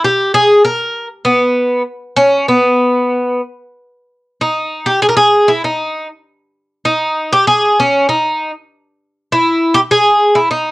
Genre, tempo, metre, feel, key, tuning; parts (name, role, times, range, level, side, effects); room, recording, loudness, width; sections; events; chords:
fado; 98 BPM; 4/4; rubato; G# harmonic minor; A4 = 441 Hz
Irish bouzouki; solo; 0.0-10.7 s; B3 to A#4; -10 LUFS; equal; cassette tape
light reverb; home recording on cassette; -11 LUFS; side -21 dB against mid
0.0-3.8 A section; 3.8-10.7 B section